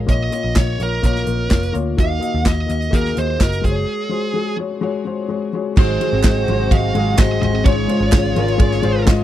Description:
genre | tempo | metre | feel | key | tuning
piano-driven pop | 127 BPM | 4/4 | straight | unclear | A4 = 445 Hz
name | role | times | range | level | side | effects
felt-muted upright piano | accompaniment | 0.0-9.2 s | Ab2 to Eb5 | -21 LUFS | left 7 dB | none
vintage muted picked electric bass | bass | 0.0-9.2 s | F1 to Eb2 | -21 LUFS | right 1 dB | none
high-gain lead guitar | melody | 0.1-9.0 s | Ab4 to F5 | -23 LUFS | right 3 dB | distortion
natural country drum kit | drums | 0.1-9.2 s | crash cymbal, handclaps, hi-hat, kick drum, ride cymbal, snare drum, toms | -16 LUFS | right 1 dB | none
warm studio string section | sustained chords | 5.8-9.2 s | C3 to Gb4 | -30 LUFS | equal | none
picked steel-string acoustic guitar | riff | 5.8-9.2 s | Ab2 to Ab4 | -25 LUFS | right 7 dB | none
group handclap | percussion | 6.2-9.2 s | none | -29 LUFS | right 20 dB | none
room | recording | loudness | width
little or no reverb | dry, close 1970s-style studio recording | -15 LUFS | side -12 dB against mid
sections
0.0-5.8 A section; 5.8-9.2 B section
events
break 3.9-5.8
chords
0.1 Bbm; 2.0 Ebm; 3.6 Gbsus2; 5.8 Ab7; 7.7 Db/Ab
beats
| 0.09 0.56 1.04 1.51 | 1.98 2.46 2.93 3.41 | 3.88 4.35 4.83 5.30 | 5.77 6.25 6.72 7.19 | 7.66 8.14 8.61 9.08

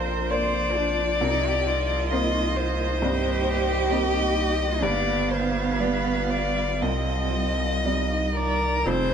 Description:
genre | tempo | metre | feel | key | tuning
neoclassical piano and strings | 58-67 BPM | 4/4 | rubato | C minor | A4 = 438 Hz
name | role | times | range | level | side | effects
warm violin | melody | 0.0-9.1 s | Bb4 to Eb5 | -27 LUFS | left 5 dB | none
warm cello | second line | 0.0-9.1 s | B3 to C5 | -28 LUFS | right 5 dB | none
clear upright piano | accompaniment | 0.0-9.1 s | C2 to Eb5 | -31 LUFS | right 2 dB | none
rich viola | accompaniment | 0.0-9.1 s | C4 to F5 | -33 LUFS | right 5 dB | none
granular cloud pad | sustained chords | 0.0-9.1 s | G3 to F5 | -34 LUFS | right 1 dB | built-in reverb
saturated sub bass | bass | 0.0-9.1 s | F1 to C2 | -29 LUFS | equal | none
folk marimba with medium hard mallets | arpeggios | 0.3-9.1 s | C4 to F5 | -34 LUFS | left 1 dB | none
room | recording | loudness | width
moderate stone room reverb, RT60 1.3 s | band playing live in one room | -22 LUFS | side -7 dB against mid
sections
0.0-8.9 A section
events
none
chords
0.0 Bbadd9; 1.2 Cm7; 4.8 G7; 6.8 Cmadd9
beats
0.31 | 1.22 2.12 3.03 3.92 | 4.83 5.80 6.83 7.86 | 8.86

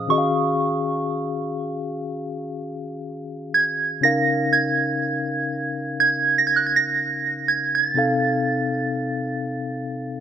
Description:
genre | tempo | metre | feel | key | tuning
R&B | 61 BPM | 4/4 | swing 54% on 16ths | unclear | A4 = 439 Hz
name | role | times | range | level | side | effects
soft synth bell | melody | 0.0-10.2 s | Db6 to Bb6 | -21 LUFS | right 4 dB | chorus
mellow tine electric piano | accompaniment | 0.0-10.2 s | Bb2 to F5 | -24 LUFS | left 2 dB | medium stereo tremolo
room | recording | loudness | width
moderate plate reverb, RT60 3.2 s | none | -20 LUFS | side -9 dB against mid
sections
0.0-10.2 A section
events
tine electric piano fill 9.9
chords
0.1 Ebm11; 4.0 Db69; 8.0 F7/C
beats
| 0.10 1.08 2.06 3.05 | 4.03 5.01 6.00 6.98 | 7.96 8.95 9.93

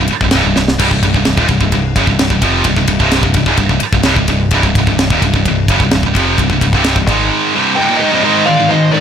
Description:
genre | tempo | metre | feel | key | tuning
heavy metal | 129 BPM | 4/4 | straight | C minor | A4 = 440 Hz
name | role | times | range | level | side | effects
heavy high-gain guitar | riff | 0.0-9.0 s | C2 to Ab3 | -15 LUFS | right 12 dB | distortion
high-gain distorted guitar | riff | 0.0-9.0 s | C2 to Ab3 | -16 LUFS | left 11 dB | distortion
growling picked electric bass | bass | 0.0-7.3 s | C1 to Ab1 | -17 LUFS | equal | overdrive
tight metal drum kit | drums | 0.1-7.2 s | crash cymbal, kick drum, ride cymbal, snare drum | -15 LUFS | equal | none
high-gain lead guitar | melody | 7.8-9.0 s | D5 to G5 | -14 LUFS | equal | distortion
high-gain lead guitar | second line | 7.8-9.0 s | Bb4 to Eb5 | -22 LUFS | right 2 dB | distortion
tight distorted guitar | riff | 8.2-9.0 s | Ab2 to Ab3 | -18 LUFS | equal | distortion
room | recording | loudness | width
light reverb | none | -10 LUFS | side -8 dB against mid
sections
0.0-8.2 A section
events
drum fill 0.6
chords
0.0 C5; 7.1 Ab5; 7.5 Cm; 8.2 Ab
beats
0.33 | 0.80 1.26 1.73 2.20 | 2.66 3.13 3.59 4.06 | 4.52 4.99 5.45 5.92 | 6.38 6.85 7.31 7.77 | 8.24 8.70

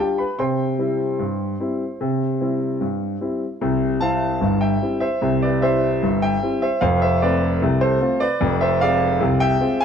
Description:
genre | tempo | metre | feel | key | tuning
ragtime piano | 75 BPM | 2/4 | straight | C major | A4 = 443 Hz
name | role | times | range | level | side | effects
clear concert grand piano | solo | 0.0-9.8 s | F1 to C6 | -18 LUFS | equal | none
room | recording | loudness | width
moderate echo chamber reverb, RT60 1.4 s | worn, warbling old tape, cassette tape, warbly pitch drift | -18 LUFS | side -7 dB against mid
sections
0.0-3.6 A section; 3.6-9.8 B section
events
none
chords
0.4 C; 6.8 F; 8.4 Fm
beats
| 0.38 1.19 | 2.00 2.80 | 3.61 4.41 | 5.21 6.01 | 6.81 7.61 | 8.40 9.20

